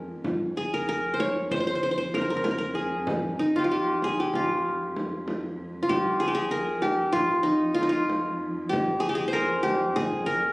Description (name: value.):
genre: Turkish makam ensemble.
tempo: 191 BPM (eighths).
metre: 9/8.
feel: straight.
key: F makam ussak.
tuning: A4 = 440 Hz.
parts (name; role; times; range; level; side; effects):
qanun; melody; 0.0-10.5 s; Eb4 to Db5; -24 LUFS; equal; none.
dark cello; drone; 0.0-10.5 s; F2; -35 LUFS; equal; none.
frame drum; percussion; 0.2-10.1 s; none; -33 LUFS; equal; none.
room: wet recital hall reverb, RT60 1.4 s.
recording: recorded on a phone in the room, studio reverb.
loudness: -24 LUFS.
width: side -25 dB against mid.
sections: 0.0-5.9 A section; 5.9-10.5 B section.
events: none.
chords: none.